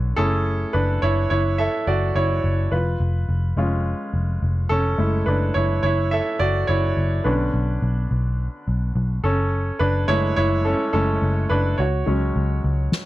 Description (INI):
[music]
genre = piano-driven pop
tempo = 106 BPM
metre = 4/4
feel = swing 56% on 16ths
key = F# minor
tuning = A4 = 440 Hz
[part]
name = bright concert grand piano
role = accompaniment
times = 0.0-13.1 s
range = D3 to E5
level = -22 LUFS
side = right 1 dB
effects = none
[part]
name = vintage muted picked electric bass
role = bass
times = 0.0-12.9 s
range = E#1 to C#2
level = -21 LUFS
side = equal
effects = none
[part]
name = snare drum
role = drums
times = 12.9-13.1 s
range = none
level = -21 LUFS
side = left 2 dB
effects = none
[sound]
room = little or no reverb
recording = dry, close 1970s-style studio recording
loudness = -19 LUFS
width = side -16 dB against mid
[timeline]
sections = 0.0-13.1 A section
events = grand piano solo 0.0-13.1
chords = 0.2 F#m7; 2.7 C#/E#; 5.0 F#m7; 7.3 Bmadd9; 9.2 F#m7; 11.8 C#sus4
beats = | 0.45 1.02 1.59 2.15 | 2.72 3.29 3.86 4.42 | 4.99 5.56 6.12 6.69 | 7.26 7.83 8.39 8.96 | 9.53 10.09 10.66 11.22 | 11.79 12.36 12.92